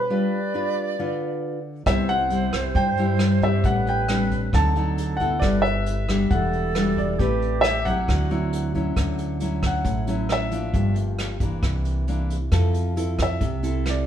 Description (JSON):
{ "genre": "bossa nova", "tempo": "135 BPM", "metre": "4/4", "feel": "straight", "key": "G major", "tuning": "A4 = 441 Hz", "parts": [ { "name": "warm concert grand piano", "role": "melody", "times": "0.0-14.1 s", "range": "B4 to A5", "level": "-25 LUFS", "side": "equal", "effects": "none" }, { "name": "nylon-string guitar", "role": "accompaniment", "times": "0.0-14.1 s", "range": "G2 to B4", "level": "-25 LUFS", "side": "left 1 dB", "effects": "none" }, { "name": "bright reedy alto flute", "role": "second line", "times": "0.1-8.8 s", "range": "F#4 to D5", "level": "-30 LUFS", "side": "right 4 dB", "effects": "none" }, { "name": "upright bass", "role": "bass", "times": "1.9-14.1 s", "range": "E1 to G2", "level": "-25 LUFS", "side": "equal", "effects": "none" }, { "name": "vintage brush drum kit", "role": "drums", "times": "1.9-14.0 s", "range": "hi-hat, kick drum, rim click", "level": "-27 LUFS", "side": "equal", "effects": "none" } ], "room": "moderate stone room reverb, RT60 1.0 s", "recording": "band playing live in one room", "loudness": "-20 LUFS", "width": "side -10 dB against mid", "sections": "0.0-9.0 A section; 9.0-14.1 B section", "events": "grand piano solo 9.0-14.1", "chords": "0.1 G7; 1.9 Cmaj7; 3.6 Am11; 4.5 D7b9; 5.4 G69; 6.3 Em9; 7.2 Am9; 8.1 D9; 9.0 Dmaj9; 10.7 Gm7; 11.6 C9; 12.5 Fmaj7" }